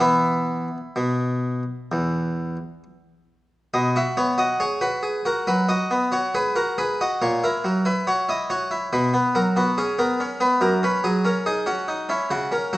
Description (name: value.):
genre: classical, baroque-style suite movement for harpsichord.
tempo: 62-71 BPM.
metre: 4/4.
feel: rubato.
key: B major from 3.7 s.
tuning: A4 = 443 Hz.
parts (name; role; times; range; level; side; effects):
harpsichord; solo; 0.0-12.8 s; E2 to E5; -20 LUFS; equal; none.
room: wet recital hall reverb, RT60 1.4 s.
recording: worn, warbling old tape, cassette tape, warbly pitch drift.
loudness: -20 LUFS.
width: side -17 dB against mid.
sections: 0.0-3.7 A section; 3.7-12.8 A section.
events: none.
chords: 0.0 E5; 3.7 B5; 7.2 F#7/A#; 8.9 B5; 10.6 F#5.